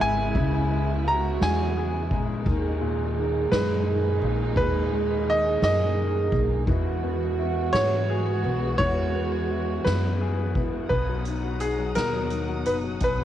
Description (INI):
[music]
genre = six-eight pop ballad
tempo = 57 BPM (dotted quarters)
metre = 6/8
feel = straight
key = B major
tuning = A4 = 440 Hz
[part]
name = bright grand piano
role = melody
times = 0.0-13.2 s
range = G#4 to A#5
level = -28 LUFS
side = equal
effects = cassette tape, tape echo
[part]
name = warm French horn section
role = second line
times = 0.0-10.9 s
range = E4 to G#4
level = -29 LUFS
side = right 9 dB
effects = cassette tape
[part]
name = clear concert grand piano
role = accompaniment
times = 0.0-13.2 s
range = A#2 to G#4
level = -31 LUFS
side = left 9 dB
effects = cassette tape
[part]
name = warm studio string section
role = sustained chords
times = 0.0-13.2 s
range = A#2 to D#6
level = -34 LUFS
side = equal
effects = cassette tape
[part]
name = upright bass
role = bass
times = 0.0-13.2 s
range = F#1 to G#2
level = -28 LUFS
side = equal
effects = none
[part]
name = soft-mallet drum kit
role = drums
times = 0.3-13.2 s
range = crash cymbal, hi-hat, kick drum, ride cymbal, snare drum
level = -31 LUFS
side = equal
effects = cassette tape
[sound]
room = moderate booth ambience, RT60 0.2 s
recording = home recording on cassette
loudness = -22 LUFS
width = side -11 dB against mid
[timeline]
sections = 0.0-10.9 A section; 10.9-13.2 B section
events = none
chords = 0.0 C#m7; 2.5 G#madd9; 6.7 Eadd9; 10.9 Bmaj7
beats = | 0.35 1.41 | 2.46 3.52 | 4.57 5.63 | 6.68 7.74 | 8.79 9.85 | 10.90 11.96 | 13.02